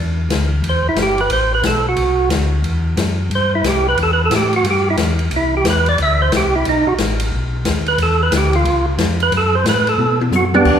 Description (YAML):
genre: soul jazz organ trio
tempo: 180 BPM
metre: 4/4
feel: swing 64% on 8ths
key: unclear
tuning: A4 = 436 Hz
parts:
  - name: mellow tonewheel organ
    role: bass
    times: 0.0-10.8 s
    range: G1 to B2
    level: -18 LUFS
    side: left 1 dB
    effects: slow rotary speaker
  - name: open jazz drum kit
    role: drums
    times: 0.3-10.8 s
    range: crash cymbal, hi-hat, kick drum, ride cymbal, snare drum, toms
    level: -21 LUFS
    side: left 3 dB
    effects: none
  - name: percussive tonewheel organ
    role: melody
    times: 0.7-10.8 s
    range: B3 to E5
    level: -16 LUFS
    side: right 2 dB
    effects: slow rotary speaker, overdrive
room: moderate concert hall reverb, RT60 2.0 s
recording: recorded in a church or concert hall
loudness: -14 LUFS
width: side -8 dB against mid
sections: 0.0-10.7 A section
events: tonewheel organ solo 0.0-10.7; drum fill 10.0-10.7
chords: 0.0 Am7; 4.0 Em; 5.3 C; 6.7 B7; 8.0 Dm69; 8.7 C#; 9.3 F#dim; 10.0 B5